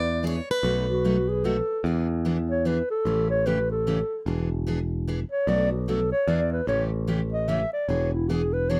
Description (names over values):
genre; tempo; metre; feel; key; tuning
acoustic string swing (jazz manouche); 149 BPM; 3/4; swing 62% on 8ths; E mixolydian; A4 = 443 Hz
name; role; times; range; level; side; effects
picked plugged-in swing-style acoustic guitar; melody; 0.0-1.4 s; B4 to D5; -31 LUFS; equal; none
modern bright picked electric bass; bass; 0.0-8.8 s; E1 to E2; -29 LUFS; equal; none
picked steel-string acoustic guitar; accompaniment; 0.2-8.8 s; B2 to G#4; -31 LUFS; equal; none
breathy clarinet; second line; 0.9-8.8 s; E4 to E5; -28 LUFS; equal; none
room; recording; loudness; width
light reverb; rough home demo mix; -25 LUFS; mono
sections
0.0-1.8 A section; 1.8-8.8 B section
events
clarinet solo 1.8-8.8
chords
0.0 E7; 0.6 B7; 1.8 E7; 3.1 A7; 4.3 E7; 5.5 Bm7; 6.3 E7; 6.7 A7; 7.9 E7